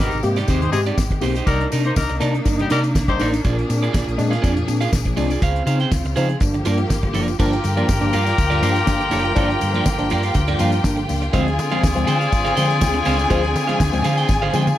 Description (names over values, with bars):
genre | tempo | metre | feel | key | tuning
disco | 122 BPM | 4/4 | straight | unclear | A4 = 437 Hz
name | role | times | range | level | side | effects
electric guitar at the edge of break-up | accompaniment | 0.0-14.7 s | Eb4 to G5 | -26 LUFS | right 6 dB | none
clear studio string section | sustained chords | 0.0-14.8 s | C3 to Ab4 | -28 LUFS | left 1 dB | none
clear horn section | stabs | 0.0-3.3, 7.4-14.8 s | G3 to D5 | -24 LUFS | left 4 dB | none
hollow-body short-scale fingered electric bass | bass | 0.0-14.7 s | F#1 to D3 | -22 LUFS | equal | none
damped 70s drum kit | drums | 0.0-14.8 s | crash cymbal, hi-hat, kick drum, snare drum, toms | -21 LUFS | equal | none
tambourine | percussion | 0.1-14.8 s | none | -36 LUFS | left 13 dB | none
tine electric piano | accompaniment | 0.2-14.7 s | G2 to G4 | -24 LUFS | left 2 dB | phaser
rich studio violin section | second line | 7.4-14.8 s | G4 to Ab5 | -24 LUFS | left 1 dB | none
room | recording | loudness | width
light reverb, studio ambience | none | -16 LUFS | side -13 dB against mid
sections
0.0-7.4 A section; 7.4-14.8 B section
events
drum fill 14.3-14.8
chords
0.0 Abmaj7; 1.5 Cm9; 3.4 Bb7; 5.4 Dbmaj7; 6.4 Gm7; 11.3 Dm7b5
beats
0.48 0.97 | 1.47 1.96 2.46 2.95 | 3.44 3.94 4.43 4.93 | 5.42 5.92 6.41 6.90 | 7.40 7.89 8.38 8.88 | 9.37 9.87 10.36 10.85 | 11.34 11.84 12.33 12.82 | 13.31 13.80 14.29